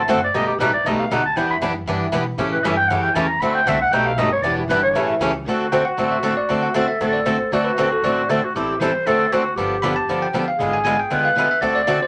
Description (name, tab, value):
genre	acoustic string swing (jazz manouche)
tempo	234 BPM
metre	4/4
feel	swing 55% on 8ths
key	D mixolydian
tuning	A4 = 440 Hz
part	growling clarinet	second line	0.0-12.1 s	F#4 to B5	-23 LUFS	equal	none
part	upright bass	bass	0.0-12.0 s	E1 to B2	-35 LUFS	equal	none
part	picked steel-string acoustic guitar	accompaniment	0.1-12.0 s	B2 to B4	-28 LUFS	equal	none
part	picked swing-style acoustic guitar	accompaniment	0.1-12.0 s	B2 to A4	-24 LUFS	equal	none
part	bell-like tine electric piano	melody	5.7-12.1 s	A4 to B5	-26 LUFS	equal	none
room	wet studio reverb, RT60 0.5 s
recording	none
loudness	-19 LUFS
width	mono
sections	0.0-5.5 A section; 5.5-12.1 B section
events	clarinet solo 0.0-5.5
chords	0.3 B7alt; 1.4 Em7; 2.4 A7; 3.4 D7; 3.9 Baug7; 4.4 Em7; 4.9 A7; 5.5 D7; 8.5 Am7; 9.1 D7; 9.6 G7; 10.6 G#dim7